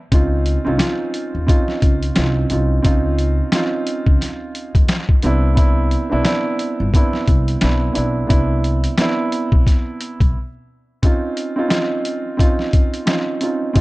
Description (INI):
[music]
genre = hip hop, boom-bap hip-hop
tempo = 88 BPM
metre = 4/4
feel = swing 58% on 16ths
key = unclear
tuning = A4 = 440 Hz
[part]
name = dark concert grand piano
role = accompaniment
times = 0.1-13.8 s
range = B3 to F4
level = -20 LUFS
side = right 2 dB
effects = high-pass filter, low-pass filter
[part]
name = upright bass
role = bass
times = 0.1-13.8 s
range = G1 to Eb2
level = -19 LUFS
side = equal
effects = none
[part]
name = boom bap sampler-style drum kit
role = drums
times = 0.1-13.8 s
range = hi-hat, kick drum, snare drum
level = -16 LUFS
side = equal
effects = none
[sound]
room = small room ambience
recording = dark, warm production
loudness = -15 LUFS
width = side -20 dB against mid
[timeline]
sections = 0.1-13.8 A section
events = break 10.3-11.0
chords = 0.1 Dbmaj9; 5.2 Cmaj9; 11.0 Dbmaj9